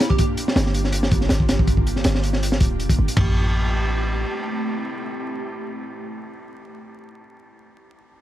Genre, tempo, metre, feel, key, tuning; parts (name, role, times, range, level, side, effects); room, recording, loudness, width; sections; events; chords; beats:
drum and bass, jungle; 161 BPM; 4/4; swing 53% on 16ths; A phrygian; A4 = 440 Hz
ethereal airy pad; sustained chords; 0.0-6.3 s; A3 to G4; -29 LUFS; right 2 dB; ensemble chorus, built-in reverb
crunchy breakbeat drum kit; drums; 0.0-3.3 s; hi-hat, kick drum, ride cymbal, snare drum, toms; -22 LUFS; equal
warm 808-style bass; bass; 0.6-4.2 s; D1 to A1; -22 LUFS; equal
studio reverb; vinyl crackle; -19 LUFS; side -13 dB against mid
0.0-3.2 A section; 3.2-6.2 B section
drop 0.0-3.2
0.0 Gm7; 3.2 Am7
| 0.19 0.56 0.93 1.31 | 1.68 2.05 2.42 2.80 | 3.17 3.54 3.91 4.29 | 4.66 5.03 5.41 5.78